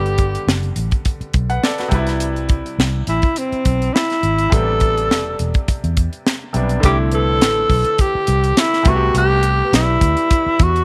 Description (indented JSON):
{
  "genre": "lush 1970s-style soul",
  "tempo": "104 BPM",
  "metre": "4/4",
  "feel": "swing 54% on 16ths",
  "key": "unclear",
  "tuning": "A4 = 440 Hz",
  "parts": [
    { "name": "growling tenor saxophone", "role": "melody", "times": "0.0-10.8 s", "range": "C4 to A4", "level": "-20 LUFS", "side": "equal", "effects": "none" },
    { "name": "bright grand piano", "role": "accompaniment", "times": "0.0-10.8 s", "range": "C3 to F#5", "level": "-28 LUFS", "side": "equal", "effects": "none" },
    { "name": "vintage muted fingered electric bass", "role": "bass", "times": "0.0-10.8 s", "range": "E1 to E2", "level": "-22 LUFS", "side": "equal", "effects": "none" },
    { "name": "tight funk drum kit", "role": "drums", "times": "0.1-10.8 s", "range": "hi-hat, kick drum, snare drum", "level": "-20 LUFS", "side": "equal", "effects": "none" },
    { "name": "large celesta", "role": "texture", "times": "7.1-10.8 s", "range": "G4 to D5", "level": "-34 LUFS", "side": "equal", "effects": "none" }
  ],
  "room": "light reverb, studio reverb",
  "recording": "none",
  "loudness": "-17 LUFS",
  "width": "mono",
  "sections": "0.0-6.8 A section; 6.8-10.8 B section",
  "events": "none",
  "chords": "0.0 Gmaj7; 1.9 Cmaj7; 4.5 Am11; 6.8 C69; 8.9 Am9"
}